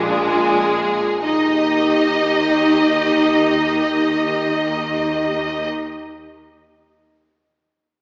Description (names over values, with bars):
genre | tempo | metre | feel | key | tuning
classical, slow romantic movement for string orchestra | free time | none | none | Eb major | A4 = 440 Hz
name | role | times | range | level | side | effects
rich studio violin section | melody | 0.0-5.7 s | Ab3 to Eb5 | -23 LUFS | equal | none
rich studio violin section | second line | 0.0-5.6 s | Eb4 to Ab4 | -23 LUFS | equal | none
dark studio viola section | accompaniment | 0.0-5.7 s | D4 to G4 | -24 LUFS | equal | none
rich studio cello section | bass | 0.0-5.7 s | Bb2 to Eb3 | -30 LUFS | equal | none
rich studio double bass section | bass | 0.0-5.7 s | Bb1 to Eb2 | -33 LUFS | equal | none
room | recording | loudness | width
wet scoring stage reverb, RT60 2.0 s | recorded in a church or concert hall, small speaker sound | -18 LUFS | mono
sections
0.0-1.3 A section; 1.3-5.6 B section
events
slowing down 0.0-1.3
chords
0.0 Bb7; 1.3 Eb